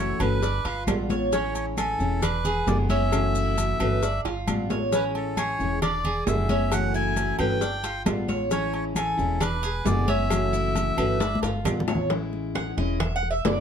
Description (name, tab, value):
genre	latin, Cuban son and guajira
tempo	134 BPM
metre	4/4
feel	straight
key	A major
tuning	A4 = 441 Hz
part	melodica	melody	0.0-11.4 s	A4 to G#5	-29 LUFS	equal	none
part	fingerpicked steel-string acoustic guitar	accompaniment	0.0-13.6 s	B2 to F#4	-29 LUFS	left 3 dB	none
part	Cuban tres	arpeggios	0.0-13.6 s	C#4 to G#5	-29 LUFS	right 2 dB	none
part	upright bass	bass	0.0-13.6 s	E1 to A1	-28 LUFS	right 1 dB	none
part	agogo bells and timbales	percussion	0.2-13.6 s	none	-34 LUFS	right 7 dB	none
part	claves	percussion	0.2-13.2 s	none	-41 LUFS	left 4 dB	none
part	congas	percussion	0.2-13.6 s	none	-31 LUFS	left 2 dB	none
part	maracas	percussion	0.2-12.1 s	none	-40 LUFS	left 7 dB	none
part	cowbell and bongos	percussion	0.4-13.6 s	none	-34 LUFS	left 8 dB	none
room	light reverb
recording	dark, warm production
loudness	-22 LUFS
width	side -8 dB against mid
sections	0.0-12.1 A section; 12.1-13.6 B section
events	drum fill 4.2-4.9, 11.2-12.1; Cuban tres solo 12.1-13.6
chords	0.4 G7; 1.3 Amaj7; 2.2 E7; 3.1 F#m7; 4.0 G7; 4.9 Amaj7; 5.8 E7; 6.7 F#m7; 7.6 G7; 8.5 Amaj7; 9.4 E7; 10.3 F#m7; 11.2 G7; 12.1 Amaj7; 13.0 E7